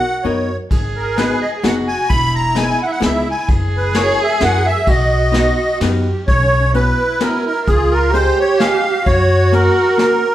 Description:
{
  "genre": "musette waltz",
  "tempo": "129 BPM",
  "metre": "3/4",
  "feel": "swing 53% on 8ths",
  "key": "B major",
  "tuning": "A4 = 440 Hz",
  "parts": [
    { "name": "musette accordion", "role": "melody", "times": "0.0-10.3 s", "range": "G#4 to B5", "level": "-17 LUFS", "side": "right 1 dB", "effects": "none" },
    { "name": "dark cello", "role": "second line", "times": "0.0-10.3 s", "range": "C#4 to G#4", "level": "-20 LUFS", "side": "right 1 dB", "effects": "none" },
    { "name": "archtop guitar, miked and amplified", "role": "accompaniment", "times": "0.0-10.2 s", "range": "G#3 to B4", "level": "-21 LUFS", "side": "left 3 dB", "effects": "none" },
    { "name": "upright bass", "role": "bass", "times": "0.2-9.7 s", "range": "E1 to F#2", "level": "-19 LUFS", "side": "equal", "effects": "none" },
    { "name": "vintage brush drum kit", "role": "drums", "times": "0.7-10.1 s", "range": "hi-hat, kick drum, ride cymbal, snare drum", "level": "-20 LUFS", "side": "equal", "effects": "none" }
  ],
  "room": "moderate large studio reverb, RT60 0.9 s",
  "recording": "band playing live in one room",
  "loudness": "-13 LUFS",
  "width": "side -13 dB against mid",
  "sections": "0.0-6.3 A section; 6.3-10.3 B section",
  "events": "none",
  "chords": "0.0 Bmaj7; 0.7 G#m7; 2.1 Emaj7; 3.5 F#7; 4.9 B; 6.3 Bsus2; 7.7 C#; 9.1 F#"
}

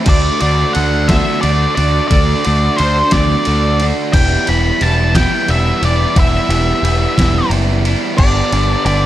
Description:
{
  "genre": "indie rock",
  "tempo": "59 BPM (dotted quarters)",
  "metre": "6/8",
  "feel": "straight",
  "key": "unclear",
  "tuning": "A4 = 439 Hz",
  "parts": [
    { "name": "overdriven electric guitar", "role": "riff", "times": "0.0-9.1 s", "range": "G2 to F#4", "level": "-18 LUFS", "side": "right 1 dB", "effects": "none" },
    { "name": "octave-fuzz lead guitar", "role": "melody", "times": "0.1-9.1 s", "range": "C5 to B5", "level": "-17 LUFS", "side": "equal", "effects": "distortion, slapback echo" },
    { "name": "growling picked electric bass", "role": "bass", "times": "0.1-9.1 s", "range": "E1 to D2", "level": "-15 LUFS", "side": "equal", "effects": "overdrive" },
    { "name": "detuned 8-bit digital drum machine", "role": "drums", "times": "0.1-9.0 s", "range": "crash cymbal, kick drum, ride cymbal, snare drum", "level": "-18 LUFS", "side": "equal", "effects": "none" }
  ],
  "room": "little or no reverb",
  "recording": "dark, warm production",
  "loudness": "-11 LUFS",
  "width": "side -13 dB against mid",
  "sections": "0.0-9.1 A section",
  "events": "none",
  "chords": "0.1 D; 4.1 Em; 8.2 G"
}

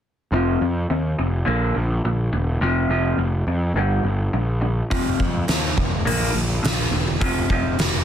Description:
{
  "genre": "quiet-loud alternative rock",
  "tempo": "105 BPM",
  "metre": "4/4",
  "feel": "straight",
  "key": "unclear",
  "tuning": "A4 = 438 Hz",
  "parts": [
    { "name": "electric guitar through a small old amp", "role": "arpeggios", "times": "0.3-8.0 s", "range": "F2 to Bb3", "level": "-24 LUFS", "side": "left 1 dB", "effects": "phaser" },
    { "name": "fuzz picked electric bass", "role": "bass", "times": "0.3-8.0 s", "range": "E1 to F2", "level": "-22 LUFS", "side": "equal", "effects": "overdrive" },
    { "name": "oversized low-tuned drum kit", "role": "drums", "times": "4.9-7.9 s", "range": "hi-hat, kick drum, snare drum", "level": "-21 LUFS", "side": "equal", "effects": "none" }
  ],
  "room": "studio ambience",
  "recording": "dense, heavily limited modern master",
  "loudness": "-19 LUFS",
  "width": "side -9 dB against mid",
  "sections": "0.3-8.0 A section",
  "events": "none",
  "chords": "0.3 F5; 1.5 Bb; 2.6 F5; 3.8 Gm; 4.9 F5; 6.1 Bb; 7.2 F5"
}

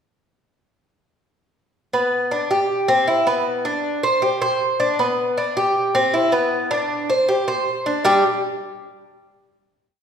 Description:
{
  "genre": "latin",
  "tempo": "157 BPM",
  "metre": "4/4",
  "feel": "straight",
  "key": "G major",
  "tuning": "A4 = 440 Hz",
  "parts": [
    { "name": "Cuban tres", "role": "solo", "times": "1.9-8.2 s", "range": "G3 to C5", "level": "-17 LUFS", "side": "equal", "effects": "none" }
  ],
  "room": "wet recital hall reverb, RT60 1.6 s",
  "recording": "recorded in a church or concert hall",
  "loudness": "-17 LUFS",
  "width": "side -7 dB against mid",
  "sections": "1.9-8.1 montuno (vamp); 8.1-9.6 final chord",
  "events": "none",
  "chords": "1.9 G; 2.7 Cmaj7; 3.5 Bm; 4.2 C5; 5.0 G; 5.8 Cmaj7; 6.5 Bm; 7.3 C5; 8.1 G5"
}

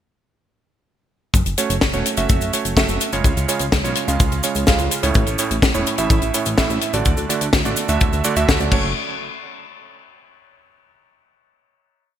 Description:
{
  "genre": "italo disco",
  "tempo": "126 BPM",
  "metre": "4/4",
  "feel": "straight",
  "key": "F# minor",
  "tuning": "A4 = 440 Hz",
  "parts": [
    { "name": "chorused synth bass", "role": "bass", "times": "1.3-8.9 s", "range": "D1 to D2", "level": "-24 LUFS", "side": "left 1 dB", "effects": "none" },
    { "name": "kick drum", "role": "drums", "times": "1.3-8.8 s", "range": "none", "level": "-18 LUFS", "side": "equal", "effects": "none" },
    { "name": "tight funk drum kit", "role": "drums", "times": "1.3-8.8 s", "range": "cabasa, crash cymbal, hi-hat, snare drum", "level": "-22 LUFS", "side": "left 2 dB", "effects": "none" },
    { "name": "warm electric grand piano", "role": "stabs", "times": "1.6-8.9 s", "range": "A2 to E#5", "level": "-22 LUFS", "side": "right 5 dB", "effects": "digital delay" }
  ],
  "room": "light reverb, studio ambience",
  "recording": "bright 1980s-style digital production",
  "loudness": "-16 LUFS",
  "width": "side -10 dB against mid",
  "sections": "1.3-9.0 verse; 9.0-10.9 final hit",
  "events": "none",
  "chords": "1.3 F#m; 3.2 C#; 5.2 A; 7.1 D; 8.7 F#m; 9.0 N.C."
}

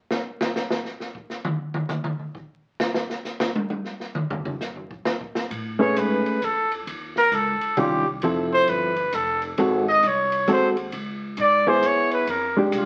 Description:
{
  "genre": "jazz, small-group swing and bop",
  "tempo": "133 BPM",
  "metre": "3/4",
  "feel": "swing 65% on 8ths",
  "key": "unclear",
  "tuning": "A4 = 440 Hz",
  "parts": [
    { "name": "open jazz drum kit", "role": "drums", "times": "0.1-12.9 s", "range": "hi-hat, kick drum, ride cymbal, snare drum, toms", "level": "-31 LUFS", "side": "equal", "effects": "none" },
    { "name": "upright bass", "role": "bass", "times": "5.5-12.9 s", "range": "F1 to A2", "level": "-36 LUFS", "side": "equal", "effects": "none" },
    { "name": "clear trumpet", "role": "melody", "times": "5.8-12.9 s", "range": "D4 to D#5", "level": "-23 LUFS", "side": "equal", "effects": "none" },
    { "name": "hollow-body jazz guitar", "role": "accompaniment", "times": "5.8-12.9 s", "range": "D#3 to B4", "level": "-24 LUFS", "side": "equal", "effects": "none" }
  ],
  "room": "wet club reverb, RT60 0.8 s",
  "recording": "very old 78 rpm record, vinyl crackle",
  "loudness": "-23 LUFS",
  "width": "mono",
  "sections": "0.0-5.5 A section; 5.5-12.9 A section",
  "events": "drum solo 0.0-5.5; trumpet solo 5.5-12.9",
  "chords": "0.0 N.C.; 5.5 Amaj9; 6.9 D#9; 8.2 Fmaj7; 9.6 G#7b9; 10.9 C#m7; 12.3 Bb13"
}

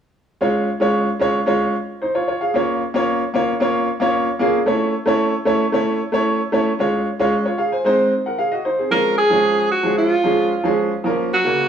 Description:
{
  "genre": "soul",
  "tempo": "113 BPM",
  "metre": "4/4",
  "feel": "straight",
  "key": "Db major",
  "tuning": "A4 = 441 Hz",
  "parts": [
    { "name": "bright upright piano", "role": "accompaniment", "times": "0.4-11.7 s", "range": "Db3 to Ab5", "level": "-17 LUFS", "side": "equal", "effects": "none" },
    { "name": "bright alto saxophone", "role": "melody", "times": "8.9-11.7 s", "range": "F4 to Bb4", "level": "-17 LUFS", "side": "right 2 dB", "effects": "analog delay" }
  ],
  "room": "wet stone room reverb, RT60 1.1 s",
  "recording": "band playing live in one room",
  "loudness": "-16 LUFS",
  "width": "side -8 dB against mid",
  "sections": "0.4-8.9 A section; 8.9-11.7 B section",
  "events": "none",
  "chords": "0.4 Db; 2.5 Bbm; 4.7 A; 6.8 Db/Ab; 7.9 Ab; 8.9 Db; 11.0 Bbm"
}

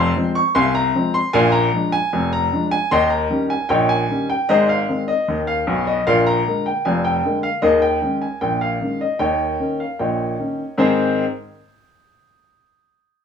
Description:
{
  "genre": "ragtime piano",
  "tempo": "76 BPM",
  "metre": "2/4",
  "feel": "straight",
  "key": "Ab major",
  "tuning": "A4 = 439 Hz",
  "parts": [
    { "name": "warm upright piano", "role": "solo", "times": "0.0-11.2 s", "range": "F1 to Db6", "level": "-16 LUFS", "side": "left 1 dB", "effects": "none" }
  ],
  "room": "moderate studio reverb, RT60 0.8 s",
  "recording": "small room ambience",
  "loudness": "-16 LUFS",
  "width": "side -7 dB against mid",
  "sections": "0.0-10.8 A section; 10.8-12.4 B section",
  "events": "none",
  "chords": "0.0 Fm; 1.4 Bb7; 2.9 Eb7; 4.5 Ab; 6.1 Bb7; 7.6 Eb7sus4; 9.2 Eb7; 10.8 Ab"
}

